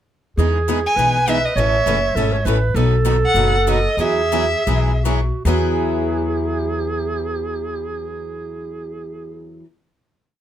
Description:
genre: acoustic string swing (jazz manouche).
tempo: 142-203 BPM.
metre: 4/4.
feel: swing 57% on 8ths.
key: E major.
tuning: A4 = 440 Hz.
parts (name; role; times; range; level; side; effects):
breathy clarinet; second line; 0.4-9.6 s; F#4 to C#5; -23 LUFS; right 5 dB; none.
picked steel-string acoustic guitar; accompaniment; 0.4-9.7 s; B2 to A4; -26 LUFS; left 6 dB; none.
picked steel-string acoustic guitar; accompaniment; 0.4-9.7 s; B2 to B4; -27 LUFS; right 6 dB; none.
upright bass; bass; 0.4-9.6 s; F#1 to E2; -20 LUFS; left 1 dB; none.
warm violin; melody; 0.9-5.1 s; D#5 to G#5; -20 LUFS; equal; slapback echo.
room: light reverb.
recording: close, detailed microphones.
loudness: -16 LUFS.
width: side -10 dB against mid.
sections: 0.4-5.5 A section; 5.5-8.8 final chord.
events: slowing down 2.7-5.5.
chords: 0.4 Emaj7; 1.6 Aadd9; 2.7 B; 4.0 Eadd9.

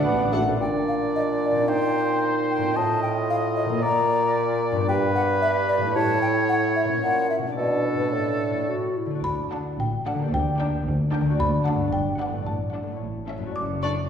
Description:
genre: cinematic.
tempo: 112 BPM.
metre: 2/4.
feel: straight.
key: Bb major, D major from 4.9 s.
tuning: A4 = 440 Hz.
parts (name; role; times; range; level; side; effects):
clear oboe; second line; 0.0-8.9 s; A4 to F#5; -28 LUFS; equal; none.
mellow clarinet; second line; 0.0-9.2 s; D4 to G4; -29 LUFS; right 1 dB; none.
mellow hollow concert flute; second line; 0.0-8.7 s; B4 to Bb5; -26 LUFS; left 2 dB; none.
rich studio violin section; second line; 0.0-0.3, 9.5-13.9 s; A4 to D5; -43 LUFS; left 3 dB; none.
clear bassoon; accompaniment; 0.0-9.0 s; G2 to B3; -26 LUFS; right 1 dB; none.
concert harp; arpeggios; 0.0-14.1 s; F#2 to D6; -29 LUFS; left 2 dB; none.
bright studio double bass section; bass; 0.0-0.5, 9.2-14.0 s; F#1 to D2; -29 LUFS; right 1 dB; none.
clear studio cello section; bass; 0.0-0.3, 9.2-14.0 s; D2 to D4; -33 LUFS; right 2 dB; none.
dark tuba; bass; 0.0-0.5 s; A1; -32 LUFS; right 3 dB; none.
rich studio violin section; melody; 0.3-0.4, 9.5-13.9 s; D5 to G5; -37 LUFS; left 4 dB; none.
rich studio viola section; accompaniment; 0.3-0.4, 9.5-13.9 s; C#4 to A4; -34 LUFS; right 4 dB; none.
xylophone with soft rubber mallets; melody; 9.2-14.1 s; F#5 to D6; -30 LUFS; left 2 dB; none.
room: wet scoring stage reverb, RT60 1.4 s.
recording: heard from further back in the room.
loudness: -21 LUFS.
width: side -8 dB against mid.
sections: 0.6-9.2 A section; 9.2-14.1 B section.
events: none.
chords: 0.0 D; 0.6 Bb; 1.7 Cm7/Bb; 3.8 Bb; 4.9 G; 6.0 A; 7.0 F#7/A#; 7.6 Bm7; 8.1 Asus4; 8.7 A; 9.2 D; 10.3 Gm/D; 11.4 D; 11.9 Gmaj7; 12.5 D/A; 13.0 A; 13.6 D/F#.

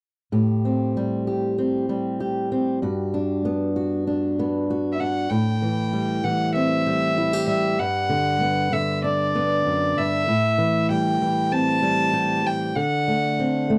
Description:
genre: acoustic folk duo or small band.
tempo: 96 BPM.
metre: 4/4.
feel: straight.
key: A dorian.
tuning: A4 = 440 Hz.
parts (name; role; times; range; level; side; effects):
fingerpicked steel-string acoustic guitar; accompaniment; 0.3-13.8 s; F#2 to G4; -24 LUFS; equal; none.
warm fiddle; melody; 4.9-13.7 s; D5 to A5; -25 LUFS; equal; none.
room: moderate booth ambience, RT60 0.2 s.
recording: dry, close 1970s-style studio recording.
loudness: -23 LUFS.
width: mono.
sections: 0.3-5.3 A section; 5.3-13.8 B section.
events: none.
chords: 0.3 Am7; 2.8 Gmaj7; 5.3 Am7; 7.8 Gmaj7; 10.3 Am7; 12.8 D7.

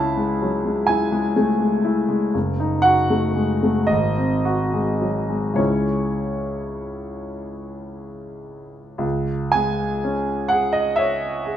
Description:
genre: classical, romantic nocturne for solo piano.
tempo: 33-42 BPM (dotted quarters).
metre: 12/8.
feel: rubato.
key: C# minor.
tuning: A4 = 440 Hz.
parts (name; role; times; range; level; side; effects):
clear concert grand piano; solo; 0.0-11.6 s; F#1 to B5; -19 LUFS; equal; none.
room: moderate recital hall reverb, RT60 1.4 s.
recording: minimal, uncompressed stereo recording.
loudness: -18 LUFS.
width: side -10 dB against mid.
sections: 0.0-9.0 A section; 9.0-11.6 A section.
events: none.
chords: 0.0 C#m; 2.3 D#dim/F#; 3.9 G#7; 5.6 C#m.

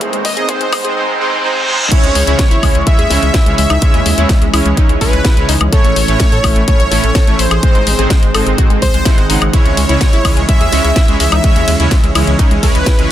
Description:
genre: progressive house.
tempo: 126 BPM.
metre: 4/4.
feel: straight.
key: C# minor.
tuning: A4 = 440 Hz.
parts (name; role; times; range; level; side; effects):
lush unison pad; sustained chords; 0.0-13.1 s; G#2 to D#5; -23 LUFS; equal; chorus, sidechain pumping.
wide unison pluck; arpeggios; 0.0-13.1 s; G#3 to C#5; -21 LUFS; equal; sidechain pumping, tape echo.
soft supersaw; stabs; 0.0-13.1 s; G#2 to F#5; -18 LUFS; right 2 dB; vintage 12-bit sampler grit, sidechain pumping, tape echo.
electronic kick drum; drums; 0.0-13.0 s; none; -11 LUFS; equal; high-pass filter on kick, high-pass filter on room.
house drum kit; drums; 0.0-13.1 s; crash cymbal, hi-hat, ride cymbal, snare drum, woodblock; -19 LUFS; left 2 dB; none.
riser and reverse cymbal; sound effects; 0.1-1.9 s; none; -21 LUFS; equal; none.
wide unison lead; melody; 0.2-13.1 s; B4 to E5; -19 LUFS; equal; sidechain pumping, tape echo.
round analog bass; bass; 2.0-13.1 s; G#1 to A2; -16 LUFS; equal; sidechain pumping.
room: little or no reverb.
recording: dense, heavily limited modern master, high-pass filter.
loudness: -9 LUFS.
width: side -12 dB against mid.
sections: 0.0-1.9 A section; 1.9-13.1 B section.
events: build-up 0.0-1.9; drum fill 0.0-1.0; filter sweep on synth pluck 0.0-1.9; filter sweep on supersaw synth 0.0-1.9; filter sweep 0.0-1.9; riser 0.1-1.9; reverse cymbal 1.0-1.9; drop 1.9-13.1.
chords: 0.0 G#; 1.9 C#m; 5.7 A; 7.6 G#; 9.5 C#m.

